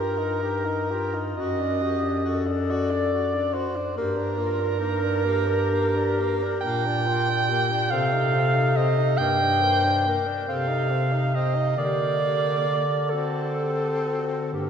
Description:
classical, lyrical piece for single-reed quartet; 41-48 BPM (dotted quarters); 6/8; rubato; G minor; A4 = 440 Hz
mellow clarinet; melody; 0.0-14.7 s; D4 to C5; -32 LUFS; left 6 dB
warm alto saxophone; second line; 0.0-14.7 s; G4 to G5; -24 LUFS; right 2 dB
warm tenor saxophone; accompaniment; 0.0-14.7 s; Bb3 to G4; -32 LUFS; left 4 dB
warm bass clarinet; bass; 0.0-14.7 s; F#2 to D3; -26 LUFS; equal
wet church reverb, RT60 3.9 s; recorded in a church or concert hall; -21 LUFS; side -7 dB against mid
0.0-14.7 A section
0.0 Eb/G; 1.4 D/F#; 4.0 Gm; 6.6 Gm/Bb; 7.9 Cm; 9.2 Gm; 10.5 Cm; 11.8 Gm/D; 13.1 D5
| 1.37 2.69 | 3.97 5.24 | 6.64 7.92 | 9.19 10.47 | 11.77 13.11 | 14.52

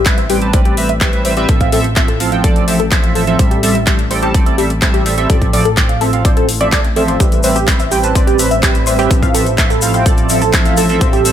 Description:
progressive house; 126 BPM; 4/4; straight; A4 = 441 Hz
tight sequenced synth; arpeggios; 0.0-11.2 s; G4 to F5; -19 LUFS; left 1 dB; chorus, sidechain pumping, ping-pong delay
fat analog bass; bass; 0.0-11.3 s; A1; -19 LUFS; equal; sidechain pumping
chorused polysynth; stabs; 0.1-11.3 s; F3 to A5; -17 LUFS; right 2 dB; cassette tape, sidechain pumping, ping-pong delay
big-room dance drum kit; drums; 0.1-11.3 s; handclaps, hi-hat; -19 LUFS; left 1 dB; small room ambience
electronic kick drum; drums; 0.1-11.1 s; -13 LUFS; equal; small room ambience
shimmering ambient pad; sustained chords; 8.0-11.3 s; F3 to C5; -21 LUFS; right 2 dB; chorus, built-in reverb, phaser, sidechain pumping
cabasa; percussion; 7.2-11.3 s; -23 LUFS; left 3 dB
little or no reverb; -10 LUFS; side -10 dB against mid
0.0-11.3 A section
filter sweep on synth arpeggio sound 0.0-11.3
0.0 Cmaj7/A; 1.5 Fmaj7/A; 3.4 Am7; 5.3 Dm7/A; 7.2 Cmaj7/A; 9.1 Fmaj7/A
0.06 0.54 1.01 | 1.49 1.96 2.44 2.92 | 3.39 3.87 4.34 4.82 | 5.30 5.77 6.25 6.73 | 7.20 7.68 8.15 8.63 | 9.11 9.58 10.06 10.54 | 11.01

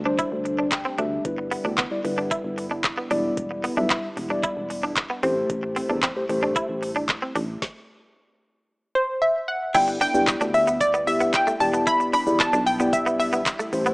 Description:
dance-pop; 113 BPM; 4/4; straight; G major; A4 = 440 Hz
chorused pulse-width pad; sustained chords; 0.0-13.9 s; C3 to E4; -32 LUFS; equal; sidechain pumping
solid FM bass; bass; 0.0-13.9 s; E1 to G2; -32 LUFS; equal; sidechain pumping
mellow tine electric piano; accompaniment; 0.1-13.9 s; G3 to G5; -26 LUFS; left 1 dB; sidechain pumping
direct-recorded clean electric guitar; riff; 0.1-13.9 s; A3 to E4; -27 LUFS; right 1 dB; ensemble chorus
smooth R&B drum kit; drums; 0.2-13.9 s; crash cymbal, handclaps, hi-hat, kick drum, shaker, snare drum; -27 LUFS; equal
analog pluck; melody; 9.0-13.7 s; C5 to B5; -21 LUFS; equal; chorus
light reverb, digital ambience; rough home demo mix, small speaker sound; -21 LUFS; side -26 dB against mid
0.0-9.7 A section; 9.7-13.9 B section
tine electric piano fill 0.5-1.2; stop 7.6-9.7
0.0 Am7; 1.2 G6; 3.1 Em7; 5.2 Am7; 7.6 N.C.; 9.7 G6; 11.6 Em7
0.19 0.72 | 1.25 1.78 2.31 2.84 | 3.37 3.90 4.44 4.97 | 5.50 6.03 6.56 7.09 | 7.62 8.15 8.68 9.21 | 9.75 10.28 10.81 11.34 | 11.87 12.40 12.93 13.46

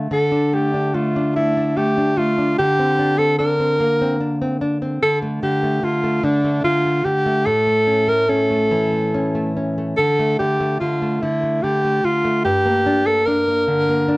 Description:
children's music; 73 BPM; 3/4; rubato; D minor; A4 = 437 Hz
nylon-string guitar; accompaniment; 0.0-14.2 s; G2 to D4; -20 LUFS; equal
clear alto saxophone; melody; 0.1-14.2 s; D4 to Bb4; -18 LUFS; equal
moderate studio reverb, RT60 0.5 s; worn, warbling old tape, cassette tape, warbly pitch drift; -16 LUFS; side -22 dB against mid
0.1-14.2 A section
0.0 D5; 2.6 Bbadd9/D; 5.0 D5; 7.5 A; 10.0 D5; 12.5 Gm
| 0.10 0.94 1.77 | 2.58 3.40 4.21 | 5.02 5.83 6.64 | 7.46 8.29 9.13 | 9.97 10.81 11.64 | 12.46 13.27 14.09

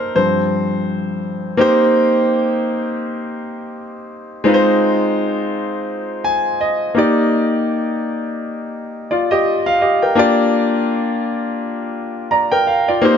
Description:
soul; 84 BPM; 4/4; swing 58% on 16ths; C minor; A4 = 441 Hz
clear concert grand piano; solo; 0.0-13.2 s; G2 to Bb5; -15 LUFS; left 1 dB
moderate echo chamber reverb, RT60 2.0 s; nothing above 7.7 kHz; -15 LUFS; side -7 dB against mid
0.0-1.6 A section; 1.6-13.2 B section
grand piano solo 0.0-1.6; grand piano fill 5.9-7.3
0.2 G7sus4; 1.6 Cm7; 4.5 Fm7; 7.0 Ebmaj7; 10.2 Gm7
0.16 0.88 | 1.59 2.31 3.03 3.74 | 4.46 5.17 5.89 6.60 | 7.32 8.03 8.74 9.46 | 10.17 10.89 11.60 12.31 | 13.03

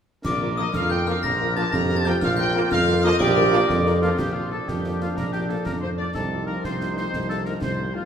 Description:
military-style march for wind band; 122 BPM (dotted quarters); 6/8; straight; Bb major; A4 = 440 Hz
warm trumpet section; melody; 0.2-8.0 s; F4 to Bb5; -28 LUFS; left 1 dB
clear euphonium; second line; 0.2-8.1 s; Bb3 to G4; -29 LUFS; right 3 dB
warm woodwind section; second line; 0.2-8.0 s; F4 to D5; -32 LUFS; left 1 dB
wooden piccolo; second line; 0.2-8.1 s; F5 to Bb6; -31 LUFS; left 1 dB
warm tuba; bass; 0.2-8.0 s; Bb1 to F2; -25 LUFS; right 2 dB
concert snare drum, clash cymbals and concert bass drum; drums; 0.2-7.8 s; -32 LUFS; left 1 dB
glockenspiel with brass mallets; second line; 0.3-4.0 s; D6 to Bb6; -30 LUFS; left 3 dB
mellow French horn section; accompaniment; 0.4-8.0 s; F3 to Bb4; -31 LUFS; left 5 dB
clear trombone section; sustained chords; 0.6-8.1 s; F3 to Eb4; -31 LUFS; right 1 dB
wet recital hall reverb, RT60 1.6 s; minimal, uncompressed stereo recording; -20 LUFS; side -8 dB against mid
0.2-4.2 A section; 4.2-8.1 B section
0.2 Bb; 6.1 F7/C
| 0.25 0.74 | 1.23 1.72 | 2.21 2.71 | 3.20 3.69 | 4.18 4.67 | 5.17 5.66 | 6.15 6.64 | 7.13 7.62

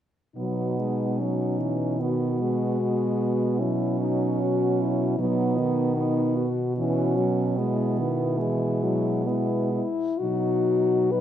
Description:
classical, lyrical piece for horn quartet; 60-78 BPM; 3/4; rubato; B major; A4 = 440 Hz
warm French horn; melody; 0.4-11.2 s; D#4 to B4; -28 LUFS; left 6 dB
mellow French horn; second line; 0.4-11.2 s; G#3 to D#4; -28 LUFS; right 6 dB
mellow French horn; accompaniment; 0.4-11.2 s; D#3 to G#3; -28 LUFS; left 3 dB
mellow French horn; bass; 0.4-11.2 s; B2; -29 LUFS; right 2 dB
light reverb; close, detailed microphones; -22 LUFS; side -10 dB against mid
0.4-10.2 A section
0.4 B
| 0.37 1.20 2.00 | 2.81 3.61 4.41 | 5.19 5.97 6.77 | 7.57 8.40 9.27 | 10.21 11.14

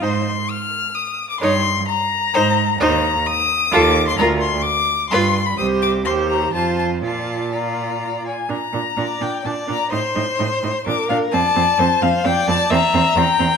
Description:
quick classical-period movement for string quartet; 129 BPM; 3/4; straight; Bb major; A4 = 440 Hz
rich violin; melody; 0.0-13.6 s; F5 to F6; -19 LUFS; left 6 dB
rich violin; second line; 0.0-13.6 s; A4 to G5; -23 LUFS; left 1 dB
rich viola; accompaniment; 0.0-13.5 s; C4 to G4; -23 LUFS; right 4 dB
rich cello; bass; 0.0-13.5 s; C2 to Bb2; -23 LUFS; right 4 dB
moderate recital hall reverb, RT60 1.4 s; -16 LUFS; side -6 dB against mid
0.0-8.5 A section; 8.5-13.6 B section
0.0 Ab; 1.4 Eb7/G; 2.3 Ab; 2.8 Cm7/Eb; 3.7 F7/Eb; 4.2 Bb/D; 5.1 G7; 5.6 C5; 6.1 Cm/Eb; 6.5 F; 7.0 Bb; 9.9 Adim; 10.9 Bb; 11.3 F; 12.7 C7/E
| 0.02 0.48 0.94 | 1.41 1.88 2.34 | 2.80 3.26 3.73 | 4.19 4.65 5.11 | 5.58 6.05 6.53 | 7.02 7.52 8.01 | 8.49 8.97 9.44 | 9.91 10.38 10.85 | 11.32 11.78 12.25 | 12.71 13.17

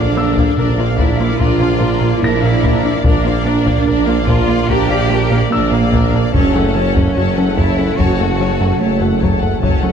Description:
cinematic, hybrid orchestral and electronic film score; 73 BPM; 4/4; straight; A4 = 439 Hz
rich symphonic violin section; melody; 0.0-9.9 s; D5 to A5; -26 LUFS; left 4 dB
warm symphonic violin section; second line; 0.0-9.9 s; A4 to D5; -24 LUFS; left 6 dB
rich symphonic viola section; accompaniment; 0.0-9.9 s; F#3 to D4; -25 LUFS; left 1 dB
deep dark ambient pad; sustained chords; 0.0-9.9 s; A#3 to F#5; -23 LUFS; equal; chorus, built-in reverb
string-like resonator pluck; arpeggios; 0.0-9.9 s; F#3 to A#4; -25 LUFS; left 6 dB
round analog bass; riff; 0.0-9.9 s; F#2 to A#3; -20 LUFS; right 1 dB
clear tuba; bass; 0.0-9.9 s; F#1 to A#1; -21 LUFS; right 3 dB
rich symphonic cello section; bass; 0.0-9.9 s; A3 to G4; -19 LUFS; right 3 dB
warm symphonic double bass section; bass; 0.0-9.9 s; F#1 to A#1; -20 LUFS; right 3 dB
clear grand piano; texture; 0.2-9.9 s; E6 to A#6; -28 LUFS; left 3 dB; ping-pong delay
taiko ensemble; drums; 0.4-9.9 s; -20 LUFS; left 2 dB
moderate concert hall reverb, RT60 2.4 s; dark, warm production; -12 LUFS; side -7 dB against mid
0.0-9.9 A section
0.0 A#; 6.3 F#m
0.58 1.41 2.23 | 3.05 3.87 4.69 5.52 | 6.34 7.16 7.98 8.80 | 9.63

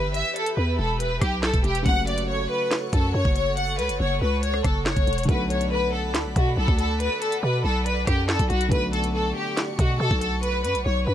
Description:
hip hop, drill; 140 BPM; 4/4; half-time; A4 = 440 Hz
rich studio violin section; melody; 0.0-11.1 s; F#4 to F#5; -25 LUFS; left 1 dB
felt-muted upright piano; accompaniment; 0.0-11.1 s; C#3 to G4; -33 LUFS; left 1 dB
airy breathy pad; sustained chords; 0.0-11.1 s; G4 to C#6; -33 LUFS; right 2 dB; chorus, phaser
growling 808-style bass; bass; 0.0-11.1 s; E1 to B2; -25 LUFS; equal
drill drum kit; drums; 0.1-10.8 s; handclaps, hi-hat, kick drum, rim click, snare drum; -24 LUFS; equal; vintage 12-bit sampler grit
light reverb; -21 LUFS; side -11 dB against mid
0.0-11.1 A section
0.0 Em; 1.9 F#m; 5.3 Bm7
| 0.14 0.57 1.00 1.43 | 1.86 2.29 2.71 3.14 | 3.57 4.00 4.43 4.86 | 5.29 5.71 6.14 6.57 | 7.00 7.43 7.86 8.29 | 8.71 9.14 9.57 10.00 | 10.43 10.86

